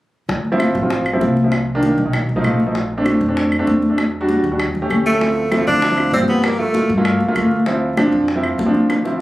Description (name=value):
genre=Afro-Cuban jazz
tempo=195 BPM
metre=4/4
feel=straight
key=D minor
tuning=A4 = 441 Hz
part: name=upright bass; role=bass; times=0.3-9.2 s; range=G1 to G2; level=-24 LUFS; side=left 1 dB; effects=none
part: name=bongos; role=percussion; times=0.3-9.1 s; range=none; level=-26 LUFS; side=left 2 dB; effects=none
part: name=congas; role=percussion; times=0.3-9.2 s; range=none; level=-22 LUFS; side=left 1 dB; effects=none
part: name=warm concert grand piano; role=accompaniment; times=0.5-9.2 s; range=Eb3 to A4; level=-17 LUFS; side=right 1 dB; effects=none
part: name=claves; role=percussion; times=0.6-9.0 s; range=none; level=-26 LUFS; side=equal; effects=none
part: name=clear tenor saxophone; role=melody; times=5.1-6.9 s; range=A3 to D4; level=-17 LUFS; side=right 1 dB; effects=none
room=moderate small room ambience, RT60 0.5 s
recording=recorded on a phone in the room, club reverb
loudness=-15 LUFS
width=side -16 dB against mid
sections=0.3-5.2 A section; 5.2-9.2 B section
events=drum fill 8.9-9.2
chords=0.3 Dm7; 1.5 Cm7; 2.1 B7#11; 2.7 Bbmaj7; 4.0 Em7; 4.6 Eb7#11; 5.2 Dm9; 6.4 Gm9; 7.7 Dm9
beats=| 0.29 0.59 0.90 1.21 | 1.52 1.83 2.13 2.44 | 2.75 3.06 3.36 3.67 | 3.98 4.29 4.59 4.90 | 5.21 5.52 5.82 6.13 | 6.44 6.75 7.05 7.36 | 7.67 7.97 8.28 8.59 | 8.89 9.20